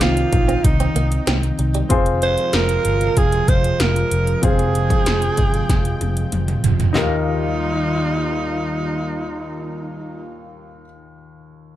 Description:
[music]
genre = 1980s-style pop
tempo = 95 BPM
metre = 4/4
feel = straight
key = Eb major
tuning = A4 = 440 Hz
[part]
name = breathy alto saxophone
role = melody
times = 0.0-10.2 s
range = Eb4 to C5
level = -22 LUFS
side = right 3 dB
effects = digital delay
[part]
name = warm baby grand piano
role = accompaniment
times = 0.0-11.8 s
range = Eb2 to G5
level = -26 LUFS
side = left 4 dB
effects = none
[part]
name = warm analog pad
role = sustained chords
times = 0.0-10.2 s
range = C3 to G5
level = -25 LUFS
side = equal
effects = chorus
[part]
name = direct-recorded clean electric guitar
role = riff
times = 0.0-1.8 s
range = G3 to C4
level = -28 LUFS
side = right 4 dB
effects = lush chorus, digital delay
[part]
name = vintage muted fingered electric bass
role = bass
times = 0.0-10.8 s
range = F1 to Eb2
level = -22 LUFS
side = equal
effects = none
[part]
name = 80s electronic pad drums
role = drums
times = 0.0-7.1 s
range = handclaps, hi-hat, kick drum, snare drum, toms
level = -19 LUFS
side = equal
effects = gated reverb on snare and toms
[sound]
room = moderate small room reverb, RT60 0.5 s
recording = none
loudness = -16 LUFS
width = side -13 dB against mid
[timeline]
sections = 0.0-7.0 A section; 7.0-9.5 B section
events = drum fill 5.7-7.0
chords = 0.0 Cmadd9; 1.9 Fm; 7.0 Ebadd9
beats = 0.01 0.64 1.27 | 1.90 2.54 3.17 3.80 | 4.43 5.06 5.69 6.33 | 6.96 7.59 8.22 8.85

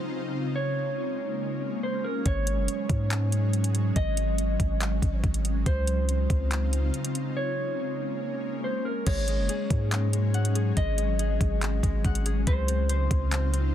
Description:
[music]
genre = hip hop, atmospheric cloud-rap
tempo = 141 BPM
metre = 4/4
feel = half-time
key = unclear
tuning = A4 = 440 Hz
[part]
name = mellow electric guitar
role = melody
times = 0.0-13.7 s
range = Bb4 to Eb5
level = -33 LUFS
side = right 1 dB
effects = low-pass filter, ping-pong delay
[part]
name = ethereal airy pad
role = sustained chords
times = 0.0-13.7 s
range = Db3 to F4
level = -32 LUFS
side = left 1 dB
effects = ensemble chorus, built-in reverb, sidechain pumping
[part]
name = long sustained 808-style bass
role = bass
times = 2.3-13.7 s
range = Gb1 to Ab2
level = -26 LUFS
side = equal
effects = none
[part]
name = smooth R&B drum kit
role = drums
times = 2.3-13.6 s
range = crash cymbal, handclaps, hi-hat, kick drum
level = -28 LUFS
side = equal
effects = none
[part]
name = concert harp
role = arpeggios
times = 9.1-13.7 s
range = Ab3 to Gb5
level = -36 LUFS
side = left 7 dB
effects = low-pass filter, ping-pong delay
[sound]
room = little or no reverb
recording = dense, heavily limited modern master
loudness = -24 LUFS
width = side -10 dB against mid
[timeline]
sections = 0.0-9.1 A section; 9.1-13.7 B section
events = break 7.4-9.1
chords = 0.0 Dbmaj9; 0.6 Bbm7; 2.3 Ab7sus4; 5.7 Dbmaj9; 7.4 Bbm7; 9.1 Ab7sus4; 12.5 Dbmaj9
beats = 0.13 | 0.56 0.98 1.41 1.83 | 2.26 2.68 3.11 3.53 | 3.96 4.38 4.81 5.24 | 5.66 6.09 6.51 6.94 | 7.36 7.79 8.21 8.64 | 9.07 9.49 9.92 10.34 | 10.77 11.19 11.62 12.04 | 12.47 12.90 13.32 13.75

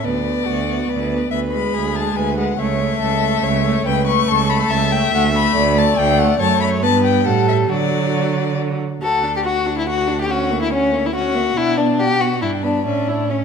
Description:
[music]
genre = quick classical-period movement for string quartet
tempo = 141 BPM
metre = 3/4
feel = straight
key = A major, D major from 3.8 s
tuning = A4 = 440 Hz
[part]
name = rich violin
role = melody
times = 0.0-13.4 s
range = C#5 to C#6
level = -22 LUFS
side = left 11 dB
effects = none
[part]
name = warm violin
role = second line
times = 0.0-13.4 s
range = C#4 to E5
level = -20 LUFS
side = left 4 dB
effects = none
[part]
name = warm viola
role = accompaniment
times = 0.0-13.4 s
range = F#3 to F#4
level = -22 LUFS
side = right 3 dB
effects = none
[part]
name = rich cello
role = bass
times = 0.1-13.4 s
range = C#2 to D3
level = -21 LUFS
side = right 6 dB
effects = none
[sound]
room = moderate recital hall reverb, RT60 1.5 s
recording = none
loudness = -15 LUFS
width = side -6 dB against mid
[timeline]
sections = 0.0-9.0 A section; 9.0-13.4 B section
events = none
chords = 0.0 Bm/D; 1.3 E7/D (rootless); 2.6 A/C#; 5.1 D5; 6.4 F#m; 6.8 G; 7.3 A5; 7.7 D; 10.3 F#7/D; 11.6 Bm; 12.4 G; 12.8 A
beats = | 0.04 0.47 0.89 | 1.31 1.74 2.16 | 2.58 3.00 3.42 | 3.85 4.27 4.70 | 5.12 5.55 5.97 | 6.39 6.83 7.26 | 7.70 8.14 8.58 | 9.02 9.45 9.88 | 10.30 10.72 11.15 | 11.57 11.99 12.42 | 12.85 13.29

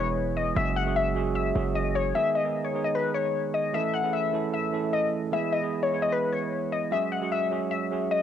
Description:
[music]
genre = hip hop, trap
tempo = 151 BPM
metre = 4/4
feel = half-time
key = G# phrygian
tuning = A4 = 438 Hz
[part]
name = glassy wavetable pluck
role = melody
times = 0.0-8.2 s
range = B4 to F#5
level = -27 LUFS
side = left 5 dB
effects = chorus, low-pass filter, cassette tape
[part]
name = bell-like tine electric piano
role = accompaniment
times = 0.0-8.2 s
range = D#3 to A4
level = -29 LUFS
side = right 8 dB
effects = low-pass filter, cassette tape
[part]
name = hard-hitting 808-style bass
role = bass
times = 0.0-2.1 s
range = E1 to F#1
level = -30 LUFS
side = equal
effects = none
[sound]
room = light reverb, digital ambience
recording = home recording on cassette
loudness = -24 LUFS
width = side -9 dB against mid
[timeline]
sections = 0.0-2.2 A section; 2.2-8.2 B section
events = none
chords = 0.0 E; 0.6 F#sus2; 2.2 G#m; 3.7 A; 5.3 E; 6.9 F#sus2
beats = 0.17 | 0.56 0.96 1.36 1.75 | 2.15 2.55 2.95 3.34 | 3.74 4.14 4.54 4.93 | 5.33 5.73 6.13 6.52 | 6.92 7.32 7.71 8.11

